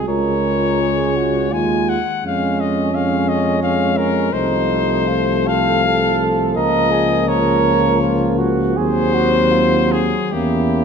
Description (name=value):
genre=classical, hymn-like piece for brass band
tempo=71-88 BPM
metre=3/4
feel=rubato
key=Db major, Bb minor from 4.3 s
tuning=A4 = 440 Hz
part: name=clear cornet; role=melody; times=0.0-10.8 s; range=G4 to Ab5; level=-20 LUFS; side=left 6 dB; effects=none
part: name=mellow flugelhorn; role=second line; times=0.0-10.8 s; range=Db4 to Bb4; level=-22 LUFS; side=right 9 dB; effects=none
part: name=clear trombone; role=accompaniment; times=0.0-10.8 s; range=F3 to Bb3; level=-23 LUFS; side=right 3 dB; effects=none
part: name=warm euphonium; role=accompaniment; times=0.0-10.8 s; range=A3 to F4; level=-23 LUFS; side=left 4 dB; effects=none
part: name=mellow tuba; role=bass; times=0.0-10.8 s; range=C2 to F2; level=-20 LUFS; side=equal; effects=none
room=moderate scoring stage reverb, RT60 1.7 s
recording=dark, warm production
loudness=-14 LUFS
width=side -6 dB against mid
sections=0.0-10.8 A section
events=none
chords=0.1 Db; 2.3 Db/F; 4.3 F7/C; 6.6 Bbm/Db; 8.8 Cdim/Eb; 10.3 Edim7